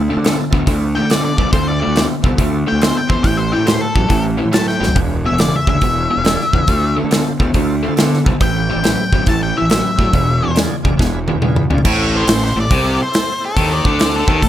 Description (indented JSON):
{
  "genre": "blues rock power trio and southern rock",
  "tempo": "140 BPM",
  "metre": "4/4",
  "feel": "swing 66% on 8ths",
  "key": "A minor",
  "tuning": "A4 = 440 Hz",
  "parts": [
    { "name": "tonewheel organ", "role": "sustained chords", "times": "0.0-14.5 s", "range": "C4 to D5", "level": "-27 LUFS", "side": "right 4 dB", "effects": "slow rotary speaker, overdrive" },
    { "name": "distorted electric guitar", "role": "riff", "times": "0.0-14.5 s", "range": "E2 to B3", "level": "-18 LUFS", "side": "left 1 dB", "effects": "overdrive" },
    { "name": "fuzz fingered electric bass", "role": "bass", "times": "0.0-14.5 s", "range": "E1 to D3", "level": "-20 LUFS", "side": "equal", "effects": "overdrive" },
    { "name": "big rock drum kit", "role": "drums", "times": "0.2-14.5 s", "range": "crash cymbal, hi-hat, kick drum, snare drum, toms", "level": "-17 LUFS", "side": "equal", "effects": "none" },
    { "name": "octave-fuzz lead guitar", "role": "melody", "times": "1.0-14.5 s", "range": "A4 to A5", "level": "-20 LUFS", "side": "left 2 dB", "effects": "distortion" }
  ],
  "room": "little or no reverb",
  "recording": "none",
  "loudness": "-13 LUFS",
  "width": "side -12 dB against mid",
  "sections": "0.0-11.9 A section; 11.9-14.5 B section",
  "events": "drum fill 4.7, 11.0-11.9; lead electric guitar solo 11.9-14.5",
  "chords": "0.0 Dm7; 3.2 Am7; 5.0 E7b9; 6.7 Dm7; 8.4 Am7; 10.1 E7b9; 11.9 Am"
}